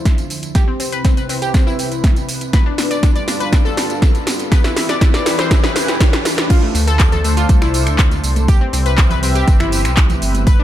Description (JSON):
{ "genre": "progressive house", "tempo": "121 BPM", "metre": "4/4", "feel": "straight", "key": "unclear", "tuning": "A4 = 440 Hz", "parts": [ { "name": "lush unison pad", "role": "sustained chords", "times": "0.0-10.6 s", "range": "C3 to E5", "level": "-24 LUFS", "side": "equal", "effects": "chorus, phaser, sidechain pumping" }, { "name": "analog pluck", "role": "arpeggios", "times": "0.0-10.6 s", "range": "A3 to D5", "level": "-22 LUFS", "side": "left 3 dB", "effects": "chorus, sidechain pumping, tape echo" }, { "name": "riser", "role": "sound effects", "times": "1.8-6.5 s", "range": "none", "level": "-29 LUFS", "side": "equal", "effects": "none" }, { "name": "deep house drum kit", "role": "drums", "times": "0.1-10.6 s", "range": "crash cymbal, finger snaps, handclaps, hi-hat, snare drum, tambourine", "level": "-20 LUFS", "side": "right 1 dB", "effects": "overdrive" }, { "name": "electronic kick drum", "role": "drums", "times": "0.1-10.6 s", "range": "none", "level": "-13 LUFS", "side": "equal", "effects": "overdrive" }, { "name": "dark detuned saw bass", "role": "bass", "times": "6.7-10.6 s", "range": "G1 to D2", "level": "-17 LUFS", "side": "equal", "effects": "sidechain pumping" }, { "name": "congas", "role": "percussion", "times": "7.1-10.4 s", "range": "none", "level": "-27 LUFS", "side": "right 4 dB", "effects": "sidechain pumping on perc" } ], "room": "little or no reverb", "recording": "none", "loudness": "-12 LUFS", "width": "side -12 dB against mid", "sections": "0.0-6.5 A section; 6.5-10.6 B section", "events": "build-up 0.0-6.5; drum fill 0.0-6.5; filter sweep on analog synth pad 0.0-6.5; drop 6.5-10.6", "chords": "0.0 Dm7; 0.6 Cmaj7; 2.5 G7; 4.5 Em; 6.5 D5; 8.5 Cmaj7" }